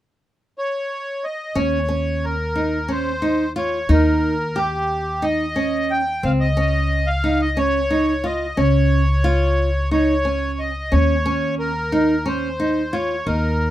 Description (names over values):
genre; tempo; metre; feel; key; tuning
contemporary instrumental, chamber music in an uneven meter; 179 BPM (eighths); 7/8; straight; unclear; A4 = 440 Hz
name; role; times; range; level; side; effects
accordion; melody; 0.6-13.7 s; G4 to G5; -22 LUFS; equal; light tremolo tuning
flamenco guitar; arpeggios; 1.6-13.7 s; C4 to G4; -21 LUFS; right 1 dB; none
upright bass; bass; 1.6-13.7 s; Db2 to Eb2; -22 LUFS; equal; none
room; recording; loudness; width
moderate studio reverb, RT60 0.7 s; close, detailed microphones; -18 LUFS; side -13 dB against mid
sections
0.0-1.5 A section; 1.5-13.7 B section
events
none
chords
0.0 N.C.; 1.5 Eb7; 6.2 Db; 10.9 Eb7(no3)